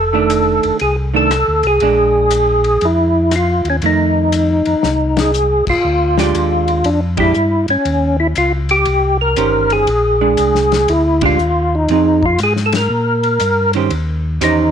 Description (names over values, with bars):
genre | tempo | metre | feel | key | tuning
soul jazz organ trio | 119 BPM | 4/4 | swing 66% on 8ths | unclear | A4 = 440 Hz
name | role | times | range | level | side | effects
percussive tonewheel organ | melody | 0.0-14.7 s | Db4 to Bb4 | -14 LUFS | equal | slow rotary speaker, chorus vibrato
mellow tonewheel organ | bass | 0.0-14.7 s | F1 to Bb2 | -18 LUFS | left 1 dB | chorus vibrato, slow rotary speaker
vintage hollow-body jazz guitar | accompaniment | 0.1-14.7 s | Eb3 to C5 | -19 LUFS | right 12 dB | none
warm soul drum kit | drums | 0.3-14.6 s | crash cymbal, hi-hat, kick drum, ride cymbal, rim click, snare drum | -25 LUFS | left 6 dB | none
room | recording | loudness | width
moderate plate reverb, RT60 1.4 s, small room ambience | 1960s-style stereo with parts hard left and right | -12 LUFS | side -8 dB against mid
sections
0.0-5.8 A section; 5.8-14.7 A section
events
drum fill 4.8-5.3; band accent 5.1, 7.1, 11.1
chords
0.0 F6; 1.8 Bb7; 3.8 F7; 5.8 Fm13/D; 7.9 Eb6; 9.9 Bb9; 11.9 Fm7; 12.9 Bbsus2; 13.9 Eb13